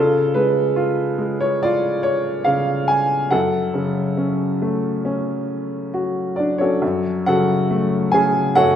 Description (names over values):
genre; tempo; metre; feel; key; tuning
classical, lyrical solo piano; 70 BPM; 4/4; rubato; F# harmonic minor; A4 = 441 Hz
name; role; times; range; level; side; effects
warm baby grand piano; solo; 0.0-8.8 s; F#2 to G#5; -17 LUFS; equal; none
room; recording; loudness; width
wet recital hall reverb, RT60 1.4 s; recorded in a church or concert hall; -17 LUFS; side -9 dB against mid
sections
0.0-6.8 A section; 6.8-8.8 B section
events
none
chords
0.0 C#; 3.3 F#m